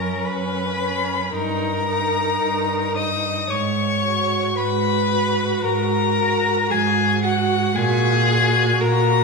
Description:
classical, slow romantic movement for string quartet; 56 BPM; 4/4; rubato; A4 = 441 Hz
rich violin; melody; 0.0-9.2 s; F#5 to D#6; -22 LUFS; left 6 dB
rich violin; second line; 0.0-9.2 s; F#4 to D#5; -24 LUFS; left 3 dB
rich viola; accompaniment; 0.0-9.2 s; C#4 to F#4; -26 LUFS; right 2 dB
rich cello; bass; 0.0-9.2 s; F#2 to A#2; -23 LUFS; right 4 dB
moderate scoring stage reverb, RT60 1.8 s; studio ambience; -18 LUFS; side -3 dB against mid
0.0-9.2 A section
0.0 F#; 1.3 D#/G; 3.5 G#m7; 7.7 F#/A#

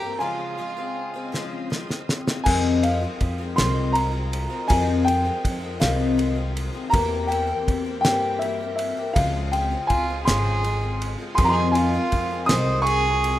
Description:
indie folk with a building arrangement; 54 BPM (dotted quarters); 6/8; straight; F minor; A4 = 438 Hz
dark upright piano; melody; 0.0-13.4 s; E5 to Eb6; -25 LUFS; equal; digital delay
warm fiddle; second line; 0.0-1.7, 9.9-13.4 s; F4 to C5; -26 LUFS; right 3 dB
picked twelve-string acoustic guitar; accompaniment; 0.0-13.4 s; F2 to G4; -27 LUFS; left 5 dB; wide subtle chorus
bright tonewheel organ; sustained chords; 0.0-13.4 s; Db3 to G5; -40 LUFS; right 1 dB; overdrive, chorus vibrato, slow rotary speaker
cloth-damped thuddy drum kit; drums; 1.3-13.4 s; crash cymbal, kick drum, ride cymbal, snare drum; -27 LUFS; equal
upright bass; bass; 2.5-13.4 s; Ab1 to G2; -26 LUFS; equal
light reverb; rough home demo mix; -20 LUFS; side -13 dB against mid
0.0-2.5 A section; 2.5-13.4 A section
drum fill 1.3-2.5
0.2 Dbmaj7; 2.5 Fm7; 6.9 C7/E; 9.2 Dbmaj7; 11.4 Fm7

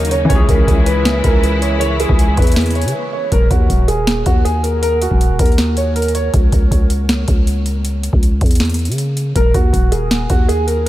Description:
hip hop, trap; 159 BPM; 4/4; half-time; Eb phrygian; A4 = 440 Hz
dark baby grand piano; melody; 0.0-6.3, 9.4-10.9 s; Gb4 to Db5; -19 LUFS; right 1 dB; analog chorus, analog delay
felt-muted upright piano; accompaniment; 0.0-3.3 s; Eb3 to Ab4; -23 LUFS; left 3 dB
muted studio string section; sustained chords; 0.0-3.3 s; Db3 to Fb4; -24 LUFS; left 1 dB
growling 808-style bass; bass; 0.0-10.9 s; Eb1 to Db3; -17 LUFS; equal
booming analog drum machine; drums; 0.0-10.9 s; hi-hat, kick drum, snare drum; -15 LUFS; equal; overdrive
light reverb, studio reverb; -12 LUFS; side -15 dB against mid
0.0-3.3 A section; 3.3-10.9 B section
break 2.9-3.3
0.3 Dbm; 3.3 Ebm; 6.3 Dbm; 9.4 Ebm

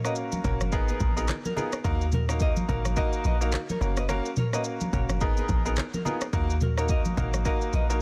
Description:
afrobeats; 107 BPM; 4/4; swing 58% on 16ths; A4 = 440 Hz
bright baby grand piano; accompaniment; 0.0-8.0 s; A#3 to A#4; -33 LUFS; equal
afro-pop drum kit; drums; 0.0-8.0 s; handclaps, kick drum, rim click, shaker, toms; -31 LUFS; equal; soft clipping on snare
nylon-string guitar; riff; 0.1-8.0 s; E#4 to D#5; -38 LUFS; equal; tape echo
congas; percussion; 0.3-7.9 s; -38 LUFS; equal
deep log drum bass; bass; 0.4-8.0 s; F#1 to D#2; -30 LUFS; equal
small room ambience; dense, heavily limited modern master; -27 LUFS; mono
0.0-8.0 A section
0.0 F#; 0.7 G#madd9; 1.8 D#m; 3.8 F#; 5.2 G#madd9; 6.3 D#m

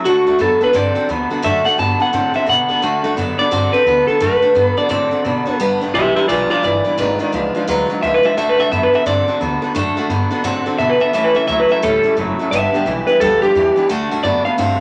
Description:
rock; 173 BPM; 4/4; swing 62% on 8ths; D major; A4 = 439 Hz
picked steel-string acoustic guitar; accompaniment; 0.0-14.8 s; G2 to B4; -25 LUFS; equal
electric guitar through a small old amp; riff; 0.0-14.8 s; G2 to C4; -23 LUFS; equal; harmonic tremolo
electric guitar through a small old amp; melody; 0.1-14.8 s; F4 to A5; -17 LUFS; equal
upright bass; bass; 0.1-14.8 s; F#1 to B2; -28 LUFS; equal
light reverb; -16 LUFS; mono
0.1-14.8 A section
clean electric guitar solo 0.1-14.8
0.1 D; 5.6 G; 7.0 G#dim7; 8.4 D; 11.1 A; 12.5 G; 13.9 D

